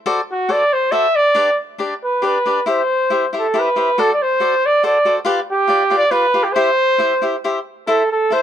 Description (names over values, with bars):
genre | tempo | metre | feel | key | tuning
mexican folk, mariachi | 139 BPM | 3/4 | rubato | C major | A4 = 440 Hz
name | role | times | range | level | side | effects
cavaquinho | accompaniment | 0.1-8.4 s | D4 to E5 | -20 LUFS | left 2 dB | none
clear trumpet | melody | 0.3-8.4 s | F#4 to E5 | -15 LUFS | right 1 dB | none
room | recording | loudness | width
studio ambience | dry, close 1970s-style studio recording | -14 LUFS | side -9 dB against mid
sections
0.0-7.9 A section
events
none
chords
0.1 D7; 1.4 G; 2.7 C; 4.0 D7; 5.3 G7; 6.6 C; 7.9 Am